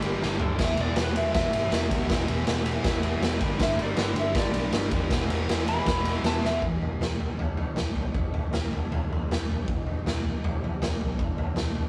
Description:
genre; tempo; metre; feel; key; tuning
garage rock duo or trio; 159 BPM; 4/4; straight; E minor; A4 = 440 Hz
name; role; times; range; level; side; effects
electric slide guitar; melody; 0.0-6.6 s; G4 to B5; -33 LUFS; equal; none
thick fuzz guitar; riff; 0.0-6.6 s; E2 to G3; -33 LUFS; equal; distortion
overdriven picked electric bass; bass; 0.0-11.9 s; E1 to E2; -34 LUFS; equal; none
raw garage drum kit; drums; 0.0-11.8 s; crash cymbal, kick drum, ride cymbal, snare drum, toms; -29 LUFS; equal; none
room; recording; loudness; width
moderate studio reverb, RT60 0.6 s; rough rehearsal-room recording, tube saturation, cassette tape; -27 LUFS; mono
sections
0.0-6.6 A section; 6.6-11.9 B section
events
drum fill 0.2-0.6, 6.4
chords
0.0 G5; 0.6 E5; 3.4 G5; 5.1 E5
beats
0.21 | 0.59 0.97 1.34 1.72 | 2.10 2.48 2.85 3.23 | 3.61 3.98 4.36 4.74 | 5.11 5.49 5.87 6.25 | 6.62 7.00 7.38 7.76 | 8.14 8.52 8.90 9.28 | 9.66 10.04 10.42 10.80 | 11.18 11.56

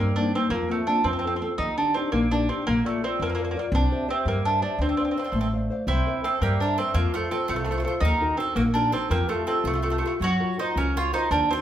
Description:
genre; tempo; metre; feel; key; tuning
italian folk, Italian serenade; 111 BPM (dotted quarters); 6/8; rubato; unclear; A4 = 440 Hz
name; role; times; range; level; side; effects
mandolin; melody; 0.0-11.6 s; A3 to Gb4; -26 LUFS; right 2 dB; none
nylon-string guitar; accompaniment; 0.0-11.6 s; C3 to F5; -27 LUFS; left 2 dB; none
upright bass; bass; 0.0-11.4 s; A1 to G2; -27 LUFS; equal; none
bowl-back mandolin; second line; 5.2-11.6 s; F4 to Db5; -33 LUFS; right 5 dB; none
room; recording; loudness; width
wet large studio reverb, RT60 0.9 s; band playing live in one room; -22 LUFS; side -11 dB against mid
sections
0.0-11.6 A section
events
none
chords
0.0 Cm7; 0.5 Fsus4; 1.0 F; 1.6 Ebmaj7; 2.7 Bb; 3.7 C; 4.8 Dm7; 5.9 C7; 6.9 F; 8.0 Ebm; 9.1 Fadd9; 10.2 Gbmaj7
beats
| 0.50 1.04 | 1.59 2.13 | 2.67 3.20 | 3.72 4.25 | 4.79 5.33 | 5.87 6.41 | 6.95 7.49 | 8.02 8.55 | 9.10 9.65 | 10.21 10.76 | 11.31

